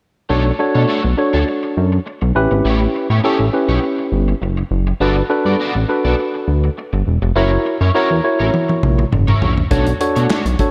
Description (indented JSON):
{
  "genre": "early-eighties boogie funk",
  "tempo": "102 BPM",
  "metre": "4/4",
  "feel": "straight",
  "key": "B minor",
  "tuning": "A4 = 439 Hz",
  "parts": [
    { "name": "tine electric piano", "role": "accompaniment", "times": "0.3-10.7 s", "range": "C#4 to C#5", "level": "-20 LUFS", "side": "equal", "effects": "slapback echo" },
    { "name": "electric guitar at the edge of break-up", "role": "riff", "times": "0.3-10.6 s", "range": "A3 to D5", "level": "-27 LUFS", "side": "equal", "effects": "analog chorus, slapback echo" },
    { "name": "chorused synth bass", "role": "bass", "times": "0.3-10.6 s", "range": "E1 to B2", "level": "-18 LUFS", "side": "equal", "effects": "none" },
    { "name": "modern studio drum kit", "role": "drums", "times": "8.5-10.7 s", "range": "handclaps, hi-hat, kick drum, snare drum, toms", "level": "-20 LUFS", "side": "equal", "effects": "none" }
  ],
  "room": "moderate lush hall reverb, RT60 1.8 s, small room reverb",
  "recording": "big arena sound",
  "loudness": "-16 LUFS",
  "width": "mono",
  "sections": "0.3-10.7 A section",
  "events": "drum fill 8.5-9.7",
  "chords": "0.3 Bm9; 2.4 A9; 5.0 Gmaj9; 7.4 F#7; 9.7 Bm9"
}